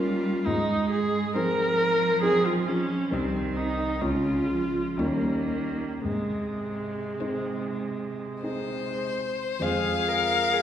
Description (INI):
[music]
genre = classical, slow romantic movement for piano quartet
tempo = 46-69 BPM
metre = 3/4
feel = rubato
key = Ab major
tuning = A4 = 440 Hz
[part]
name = rich violin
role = melody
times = 0.0-10.6 s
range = C5 to F5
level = -28 LUFS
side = left 5 dB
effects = none
[part]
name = rich cello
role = second line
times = 0.0-10.6 s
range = C3 to Bb4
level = -32 LUFS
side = right 4 dB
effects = none
[part]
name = warm grand piano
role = accompaniment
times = 0.0-10.6 s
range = C2 to Bb4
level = -30 LUFS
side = left 1 dB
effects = none
[part]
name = warm viola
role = accompaniment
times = 0.0-10.6 s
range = Ab3 to Bb4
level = -28 LUFS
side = right 1 dB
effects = none
[sound]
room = wet recital hall reverb, RT60 1.5 s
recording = recorded in a church or concert hall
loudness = -24 LUFS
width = side -10 dB against mid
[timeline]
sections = 0.0-9.6 A section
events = none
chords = 0.5 Ab; 3.1 Cm; 4.0 Db; 5.0 Eb7; 6.1 Ab; 9.6 Fm